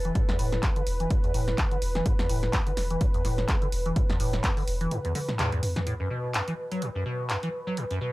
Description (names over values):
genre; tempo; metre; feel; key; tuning
acid house; 126 BPM; 4/4; swing 56% on 16ths; unclear; A4 = 440 Hz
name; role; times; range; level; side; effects
warm analog pad; sustained chords; 0.0-8.1 s; B4; -34 LUFS; right 1 dB; chorus, sidechain pumping
warm sub bass; bass; 0.0-4.9 s; E1; -30 LUFS; equal; sidechain pumping
punchy analog drum machine; drums; 0.0-8.0 s; handclaps, hi-hat, snare drum, toms; -31 LUFS; equal; none
liquid acid bass; riff; 0.1-8.1 s; E2 to F#3; -31 LUFS; equal; tube saturation, wide subtle chorus, tape echo
electronic kick drum; drums; 0.2-4.5 s; none; -26 LUFS; equal; none
room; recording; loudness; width
light reverb; dry, gritty hardware recording; -25 LUFS; side -18 dB against mid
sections
0.0-5.9 A section; 5.9-8.1 B section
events
filter sweep on acid bass 0.0-5.9; drum fill 4.9-5.9; band accent 5.4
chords
0.0 E5; 5.9 N.C.